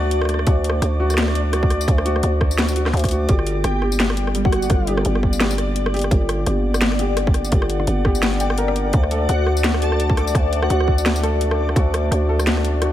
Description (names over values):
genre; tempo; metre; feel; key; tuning
half-time drum and bass; 170 BPM; 4/4; swing 57% on 16ths, half-time; G harmonic minor; A4 = 444 Hz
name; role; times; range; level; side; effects
dark analog pad; sustained chords; 0.0-12.9 s; G3 to F#5; -28 LUFS; left 1 dB; chorus, sidechain pumping
felt-muted upright piano; arpeggios; 0.0-12.9 s; G3 to G5; -27 LUFS; left 1 dB; digital delay
growling 808-style bass; bass; 0.0-12.9 s; G1 to D2; -20 LUFS; equal; none
backwards swelling texture; texture; 0.0-12.9 s; D5; -30 LUFS; left 3 dB; built-in reverb
drum and bass drum kit; drums; 0.1-12.9 s; hi-hat, rim click, snare drum, tambourine; -24 LUFS; equal; overdrive
electronic kick drum; drums; 0.5-11.8 s; none; -18 LUFS; equal; overdrive
airy dreamy lead; melody; 3.6-4.9, 9.3-10.9 s; F#4 to A4; -27 LUFS; equal; chorus, ping-pong delay
room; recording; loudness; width
digital ambience; none; -16 LUFS; side -12 dB against mid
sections
0.0-12.9 A section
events
none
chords
0.0 D; 3.3 Gm; 8.9 D